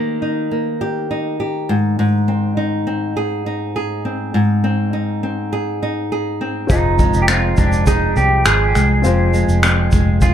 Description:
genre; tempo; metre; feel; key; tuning
acoustic pop; 102 BPM; 4/4; straight; unclear; A4 = 440 Hz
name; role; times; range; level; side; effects
flamenco guitar; accompaniment; 0.0-10.3 s; F2 to Ab4; -18 LUFS; equal; none
pedal steel guitar; second line; 6.7-10.3 s; D4 to Ab4; -19 LUFS; right 2 dB; tape echo
dark upright piano; accompaniment; 6.7-10.3 s; C4 to Eb5; -26 LUFS; left 6 dB; none
vintage muted fingered electric bass; bass; 6.7-10.3 s; F1 to C2; -16 LUFS; equal; none
unplugged drum kit; drums; 6.7-10.3 s; finger snaps, kick drum, shaker; -17 LUFS; equal; none
room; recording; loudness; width
light reverb; none; -15 LUFS; side -9 dB against mid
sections
0.0-10.3 A section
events
none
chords
0.0 Eb; 1.7 Ab; 6.7 Fm7

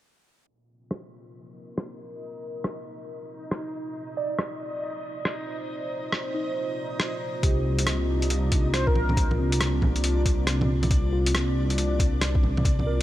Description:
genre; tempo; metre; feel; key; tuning
future garage; 138 BPM; 4/4; swing 64% on 16ths; C minor; A4 = 444 Hz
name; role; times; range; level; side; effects
dark analog pad; sustained chords; 0.5-13.0 s; Bb3 to C5; -33 LUFS; equal; chorus, phaser, sidechain pumping
backwards swelling texture; texture; 1.9-13.0 s; D4 to Eb5; -37 LUFS; left 1 dB; built-in reverb
lo-fi sampler-style drum kit; drums; 0.9-12.9 s; bongos, hi-hat, rim click; -29 LUFS; equal; overdrive
muted felt-like synth keys; accompaniment; 4.2-13.0 s; C4 to D5; -34 LUFS; right 1 dB; chorus, sidechain pumping, tape echo
dark detuned saw bass; bass; 7.4-13.0 s; C2; -25 LUFS; equal; tube saturation, sidechain pumping
electronic kick drum; drums; 7.4-12.8 s; none; -24 LUFS; equal; none
airy dreamy lead; melody; 8.7-9.2 s; Bb4 to C5; -32 LUFS; left 1 dB; chorus, analog delay
room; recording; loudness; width
light reverb, digital ambience; low-pass filter; -23 LUFS; side -14 dB against mid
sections
0.5-7.4 A section; 7.4-13.0 B section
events
filter sweep 0.5-7.4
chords
0.5 Cm9; 7.4 Csus2

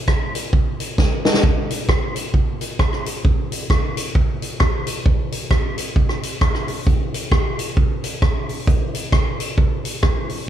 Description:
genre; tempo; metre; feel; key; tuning
ska; 133 BPM; 4/4; swing 59% on 8ths; none; none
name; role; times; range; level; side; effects
swinging big-band drum kit; drums; 0.1-10.4 s; hi-hat, kick drum, rim click, snare drum; -17 LUFS; right 1 dB; none
room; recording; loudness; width
little or no reverb; none; -17 LUFS; side -10 dB against mid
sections
0.0-1.4 A section; 1.4-10.5 B section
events
drum fill 1.0-1.4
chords
none

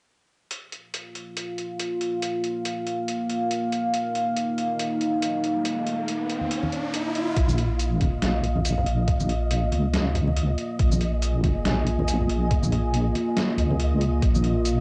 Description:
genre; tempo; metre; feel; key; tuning
deep dubstep; 140 BPM; 4/4; swing 57% on 16ths, half-time; Bb minor; A4 = 442 Hz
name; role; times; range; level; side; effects
dark analog pad; sustained chords; 1.2-14.8 s; Bb3 to Ab5; -30 LUFS; equal; chorus, vintage 12-bit sampler grit, cassette tape
trip hop sampler-style drum kit; drums; 0.5-14.7 s; hi-hat, shaker, snare drum; -34 LUFS; equal; overdrive, cassette tape
riser; sound effects; 5.3-7.4 s; none; -34 LUFS; equal; none
congas; percussion; 6.4-14.4 s; none; -35 LUFS; equal; none
deep soft wobble bass; bass; 7.4-14.8 s; Bb1 to Db2; -26 LUFS; equal; chorus
electronic kick drum; drums; 7.4-14.3 s; none; -25 LUFS; equal; overdrive, cassette tape
flickering grainy texture; texture; 7.8-14.8 s; Eb5; -38 LUFS; equal; built-in reverb, cassette tape
room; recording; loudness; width
light reverb; home recording on cassette, nothing above 10.7 kHz; -25 LUFS; mono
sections
0.5-7.4 A section; 7.4-14.8 B section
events
riser 5.3-7.4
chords
0.5 Bb5

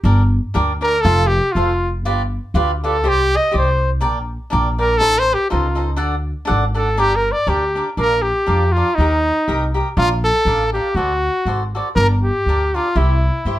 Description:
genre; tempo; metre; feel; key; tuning
mexican folk, mariachi; 121 BPM; 2/4; swing 55% on 8ths; G minor, Bb major from 8.0 s; A4 = 440 Hz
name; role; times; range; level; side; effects
cavaquinho; accompaniment; 0.0-13.6 s; D4 to G5; -22 LUFS; equal; none
upright bass; bass; 0.0-13.6 s; F1 to G2; -18 LUFS; equal; none
clear trumpet; melody; 0.8-13.6 s; Eb4 to Eb5; -17 LUFS; equal; none
room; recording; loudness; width
light reverb; none; -15 LUFS; side -14 dB against mid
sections
0.1-8.0 A section; 8.0-13.6 B section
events
none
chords
0.1 Gm; 1.1 F; 2.0 G7; 3.0 Cmadd9; 4.0 Gm/Bb; 5.0 Adim; 6.0 D; 7.0 Gm; 8.0 Bb; 9.0 Eb; 10.0 Bb; 11.0 D7; 12.0 Gm; 13.0 C

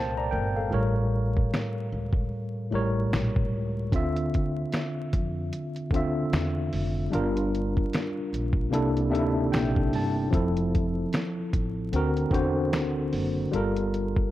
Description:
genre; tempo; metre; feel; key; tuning
lo-fi hip hop; 75 BPM; 4/4; swing 57% on 16ths; unclear; A4 = 440 Hz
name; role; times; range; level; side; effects
tine electric piano; accompaniment; 0.0-14.3 s; A2 to Bb5; -26 LUFS; equal; medium stereo tremolo, cassette tape, low-pass filter
upright bass; bass; 0.0-14.2 s; F1 to F2; -31 LUFS; equal; none
lo-fi sampler-style drum kit; drums; 1.4-14.3 s; finger snaps, hi-hat, kick drum, snare drum; -28 LUFS; equal; vintage 12-bit sampler grit
room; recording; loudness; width
light reverb; dark, warm production, vinyl crackle; -24 LUFS; side -14 dB against mid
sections
0.0-14.3 A section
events
break 0.0-3.9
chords
0.0 Bbmaj13; 0.7 A7b9; 3.9 Dm9; 7.1 Gm7; 8.7 C13; 10.3 Fmaj7; 11.9 D7b13; 13.5 Gm9

